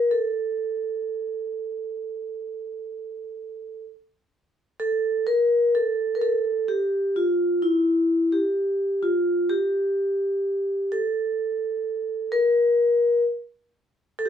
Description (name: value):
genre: arabic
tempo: 128 BPM (eighths)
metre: 10/8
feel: straight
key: A maqam hijaz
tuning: A4 = 442 Hz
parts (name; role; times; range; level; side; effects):
- vibraphone with medium mallets; solo; 0.0-14.3 s; E4 to Bb4+25c; -22 LUFS; equal; none
room: light reverb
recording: none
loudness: -21 LUFS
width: side -9 dB against mid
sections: 0.0-4.8 A section; 4.8-14.3 A section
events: none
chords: none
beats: | 0.11 0.58 1.05 1.52 1.99 2.46 2.92 3.40 3.87 4.33 | 4.80 5.27 5.74 6.21 6.68 7.15 7.62 8.09 8.56 9.03 | 9.50 9.97 10.44 10.91 11.38 11.85 12.32 12.79 13.26 13.72 | 14.19